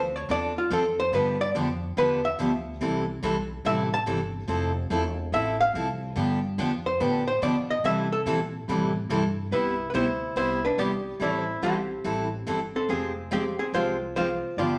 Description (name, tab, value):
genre	country, western swing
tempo	143 BPM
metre	4/4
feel	swing 66% on 8ths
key	C major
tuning	A4 = 439 Hz
part	archtop guitar, miked and amplified	melody	0.0-14.8 s	C4 to A5	-28 LUFS	equal	none
part	upright bass	bass	0.0-14.8 s	E1 to C3	-37 LUFS	equal	none
part	picked steel-string acoustic guitar	accompaniment	0.3-14.8 s	C3 to A4	-30 LUFS	equal	none
room	wet studio reverb, RT60 0.9 s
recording	none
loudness	-27 LUFS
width	mono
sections	0.0-9.5 A section; 9.5-14.8 B section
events	hollow-body jazz guitar solo 0.0-9.5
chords	0.0 F6; 1.1 G7; 2.8 C6; 4.5 Fmaj7; 6.2 G7; 7.8 C6; 9.5 Cmaj7; 11.2 Am7; 12.9 Fmadd9